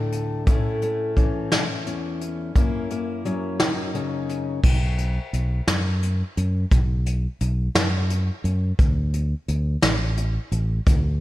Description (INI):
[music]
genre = indie folk with a building arrangement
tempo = 58 BPM (dotted quarters)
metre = 6/8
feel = straight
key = unclear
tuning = A4 = 441 Hz
[part]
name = fingerpicked steel-string acoustic guitar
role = accompaniment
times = 0.0-4.6 s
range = D2 to E4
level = -26 LUFS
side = left 2 dB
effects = none
[part]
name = vintage brush drum kit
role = drums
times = 0.1-11.0 s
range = crash cymbal, hi-hat, kick drum, snare drum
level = -22 LUFS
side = equal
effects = none
[part]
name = fingered electric bass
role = bass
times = 4.6-11.2 s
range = A1 to F#2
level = -22 LUFS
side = equal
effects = none
[sound]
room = small room ambience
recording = none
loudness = -20 LUFS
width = side -16 dB against mid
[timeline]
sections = 0.0-4.6 A section; 4.6-11.2 B section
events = none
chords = 0.5 A; 2.5 F#7; 4.6 B5; 8.8 D5